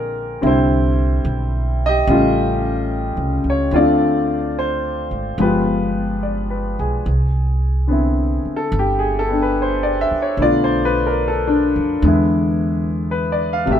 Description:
jazz ballad; 73 BPM; 4/4; swing 68% on 8ths; C major; A4 = 440 Hz
clear concert grand piano; accompaniment; 0.0-13.8 s; B2 to Bb5; -17 LUFS; left 1 dB
upright bass; bass; 0.0-13.8 s; G1 to F2; -21 LUFS; right 1 dB
light reverb; minimal, uncompressed stereo recording; -16 LUFS; side -9 dB against mid
0.0-7.1 A section; 7.1-13.8 B section
0.4 Cmaj9; 2.1 A7alt; 3.7 Dm7; 5.4 G7b9; 7.1 Cmaj9; 10.4 Bm7b5; 12.0 E7

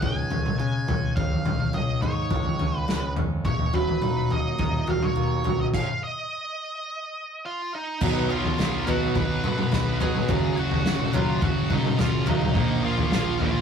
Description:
quiet-loud alternative rock; 105 BPM; 4/4; straight; Eb minor; A4 = 440 Hz
octave-fuzz lead guitar; melody; 0.0-13.6 s; Eb4 to B5; -31 LUFS; right 1 dB; distortion
picked steel-string acoustic guitar; arpeggios; 0.0-12.5 s; Eb2 to Ab4; -30 LUFS; right 2 dB
growling picked electric bass; bass; 0.0-13.6 s; Eb1 to Db3; -31 LUFS; equal; overdrive
loose indie drum kit; drums; 0.0-13.5 s; crash cymbal, kick drum, snare drum, toms; -25 LUFS; left 1 dB
thick fuzz guitar; riff; 8.0-13.6 s; Gb2 to B3; -27 LUFS; right 1 dB; distortion
moderate studio reverb, RT60 0.5 s; rough rehearsal-room recording, tube saturation; -22 LUFS; side -7 dB against mid
0.0-8.0 A section; 8.0-13.6 B section
stop 5.7-8.0
0.0 Dbsus2; 3.5 Ebmadd9; 8.0 B; 10.3 Gb5; 12.6 Bbsus4

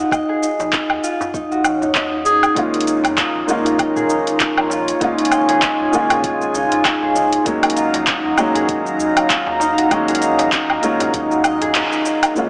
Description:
organic downtempo; 98 BPM; 4/4; swing 56% on 16ths; Eb minor; A4 = 439 Hz
concert harp; arpeggios; 0.0-12.5 s; Db4 to Eb5; -19 LUFS; equal; low-pass filter, tape echo
warm sub bass; bass; 0.0-12.5 s; Eb1 to Bb2; -38 LUFS; equal; tube saturation
afro-pop drum kit; drums; 0.1-12.5 s; handclaps, hi-hat, shaker, woodblock; -19 LUFS; equal
electronic kick drum; drums; 0.1-11.3 s; -30 LUFS; equal
darbuka; percussion; 0.3-12.2 s; -30 LUFS; equal
clear clarinet; melody; 2.3-2.5 s; Ab4; -18 LUFS; equal; digital delay
felt-muted upright piano; accompaniment; 2.5-12.5 s; Bb2 to F4; -22 LUFS; equal; sidechain pumping, tape echo
warm analog pad; sustained chords; 2.6-12.5 s; Gb3 to Db6; -20 LUFS; equal; chorus, sidechain pumping
moderate scoring stage reverb, RT60 1.8 s, small room ambience; small speaker sound; -14 LUFS; side -33 dB against mid
0.0-12.4 A section
kick drops out 11.7-12.4; band accent 11.7-12.1
0.0 Ebmadd9; 2.6 Bbm; 5.0 Db; 7.5 Ebmadd9

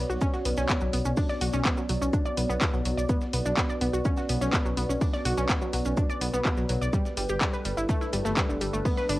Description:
melodic techno; 125 BPM; 4/4; straight; B minor; A4 = 440 Hz
dark analog pad; sustained chords; 0.0-9.2 s; G3 to D5; -34 LUFS; equal; chorus, phaser, sidechain pumping, cassette tape
swelling detuned saw bass; bass; 0.0-9.2 s; G1 to B1; -29 LUFS; equal; sidechain pumping
wide unison pluck; arpeggios; 0.1-9.1 s; D3 to D5; -30 LUFS; equal; cassette tape, sidechain pumping, analog delay
maracas; percussion; 0.1-9.1 s; -43 LUFS; right 2 dB
breakbeat sampler-style drum kit; drums; 0.2-9.2 s; hi-hat, shaker, snare drum; -44 LUFS; equal
electronic kick drum; drums; 0.2-9.0 s; -27 LUFS; equal; overdrive, studio reverb, cassette tape
house drum kit; drums; 0.5-9.2 s; handclaps, hi-hat; -30 LUFS; equal; overdrive, studio reverb, cassette tape
light reverb; home recording on cassette; -24 LUFS; side -17 dB against mid
0.0-9.2 A section
0.0 Bm; 6.9 G

